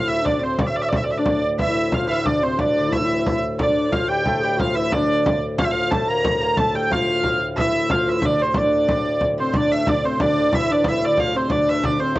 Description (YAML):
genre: medieval dance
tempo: 181 BPM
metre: 3/4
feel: straight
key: D minor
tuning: A4 = 444 Hz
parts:
  - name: clear hurdy-gurdy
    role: melody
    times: 0.0-12.2 s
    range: C5 to Bb5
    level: -20 LUFS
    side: right 1 dB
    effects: cassette tape, plate reverb
  - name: mellow duduk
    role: second line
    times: 0.0-12.2 s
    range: C4 to Bb4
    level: -24 LUFS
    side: left 2 dB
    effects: cassette tape, plate reverb
  - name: pedal harmonium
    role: drone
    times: 0.0-12.2 s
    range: D2 to A2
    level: -27 LUFS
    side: left 1 dB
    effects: cassette tape, plate reverb
  - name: frame drum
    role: percussion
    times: 0.1-12.2 s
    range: none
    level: -25 LUFS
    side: equal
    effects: none
  - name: lute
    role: second line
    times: 1.6-12.2 s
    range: C3 to Bb3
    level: -31 LUFS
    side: right 3 dB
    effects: cassette tape, plate reverb
room: moderate booth ambience, RT60 0.2 s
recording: home recording on cassette, nothing above 8.0 kHz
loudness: -17 LUFS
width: side -17 dB against mid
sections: 0.0-1.6 A section; 1.6-9.5 A section; 9.5-12.2 B section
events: none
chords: none